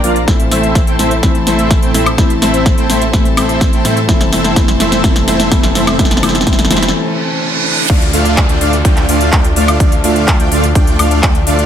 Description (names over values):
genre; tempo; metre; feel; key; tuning
EDM, festival progressive house; 126 BPM; 4/4; straight; D minor; A4 = 441 Hz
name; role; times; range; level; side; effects
felt-muted upright piano; accompaniment; 0.0-7.9 s; E3 to F4; -19 LUFS; left 3 dB; vintage 12-bit sampler grit, sidechain pumping, tape echo
rich chamber string section; sustained chords; 0.0-11.7 s; F3 to Bb5; -23 LUFS; left 1 dB; sidechain pumping
dense compressed supersaw; riff; 0.0-11.7 s; A3 to G5; -15 LUFS; right 1 dB; sidechain pumping, low-pass filter, tape echo
wide detuned saw bass; bass; 0.0-11.7 s; F1 to A2; -18 LUFS; equal; chorus, sidechain pumping
big-room dance drum kit; drums; 0.0-11.7 s; crash cymbal, handclaps, hi-hat, snare drum, woodblock; -16 LUFS; equal; overdrive
electronic kick drum; drums; 0.3-11.3 s; none; -12 LUFS; equal; none
riser, reverse cymbal and downlifter; sound effects; 5.3-11.7 s; none; -22 LUFS; right 2 dB; none
room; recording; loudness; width
light reverb, digital ambience; none; -9 LUFS; side -9 dB against mid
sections
0.0-7.9 A section; 7.9-11.7 B section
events
build-up 0.0-7.9; drum fill 0.0-6.9; break 6.9-7.9; reverse cymbal 6.9-7.9; drop 7.9-11.7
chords
0.3 Am; 4.1 F; 7.9 Dm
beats
| 0.28 0.75 1.23 1.71 | 2.18 2.66 3.13 3.61 | 4.09 4.56 5.04 5.52 | 5.99 6.47 6.94 7.42 | 7.90 8.37 8.85 9.32 | 9.80 10.28 10.75 11.23